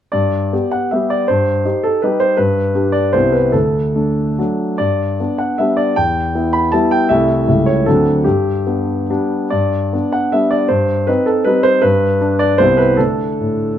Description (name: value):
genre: classical, romantic triple-time dance for piano with dotted rhythms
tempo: 136-173 BPM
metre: 3/4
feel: rubato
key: G major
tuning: A4 = 439 Hz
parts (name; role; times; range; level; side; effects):
- warm concert grand piano; solo; 0.1-13.8 s; C2 to B5; -13 LUFS; equal; none
room: light reverb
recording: none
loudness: -13 LUFS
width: side -10 dB against mid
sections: 0.1-9.5 A section; 9.5-13.8 A section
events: none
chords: 0.1 G; 1.3 Cm/G; 2.4 G; 3.1 Cmaj7; 3.5 D; 4.8 G; 6.0 Em; 7.1 Am7/C; 7.5 A7/C#; 7.9 D7; 8.2 G; 10.7 Cm/G; 11.8 G; 12.6 Cmaj7; 13.0 D5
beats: | 0.13 0.52 0.92 | 1.28 1.65 2.03 | 2.38 2.75 3.14 | 3.54 3.95 4.38 | 4.79 5.20 5.59 | 5.97 6.35 6.73 | 7.10 7.47 7.86 | 8.24 8.66 9.09 | 9.51 9.93 10.33 | 10.70 11.08 11.46 | 11.83 12.21 12.59 | 12.98 13.40